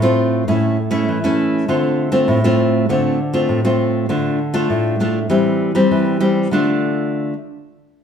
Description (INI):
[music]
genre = samba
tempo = 99 BPM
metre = 4/4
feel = straight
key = D minor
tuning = A4 = 440 Hz
[part]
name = nylon-string guitar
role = solo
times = 0.0-7.3 s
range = A2 to G4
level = -15 LUFS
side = equal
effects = none
[sound]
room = wet large studio reverb, RT60 1.3 s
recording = band playing live in one room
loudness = -15 LUFS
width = side -8 dB against mid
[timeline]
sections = 0.0-4.1 A section; 4.1-6.5 B section; 6.5-8.0 C section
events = none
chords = 0.5 A; 1.7 Dm7; 4.1 Dm; 5.3 C/E; 6.5 Dm